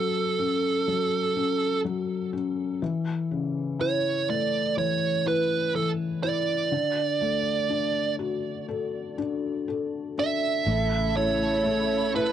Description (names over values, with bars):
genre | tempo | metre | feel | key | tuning
pop ballad | 61 BPM | 4/4 | straight | A major | A4 = 440 Hz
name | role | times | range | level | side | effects
fuzz lead guitar | melody | 0.0-12.3 s | A4 to E5 | -26 LUFS | right 6 dB | distortion, cassette tape, analog delay
felt-muted upright piano | accompaniment | 0.0-12.3 s | C#3 to A4 | -28 LUFS | left 5 dB | cassette tape
rich studio string section | sustained chords | 10.7-12.3 s | C#3 to A4 | -30 LUFS | equal | cassette tape
vintage muted fingered electric bass | bass | 10.7-12.3 s | A1 | -30 LUFS | right 1 dB | none
room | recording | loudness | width
moderate booth ambience, RT60 0.3 s | home recording on cassette, nothing above 10.9 kHz | -24 LUFS | side -10 dB against mid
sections
0.0-12.3 A section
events
none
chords
0.0 F#m; 2.8 A; 6.7 D; 10.7 A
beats
0.86 1.84 | 2.81 3.78 4.76 5.74 | 6.71 7.69 8.67 9.67 | 10.67 11.65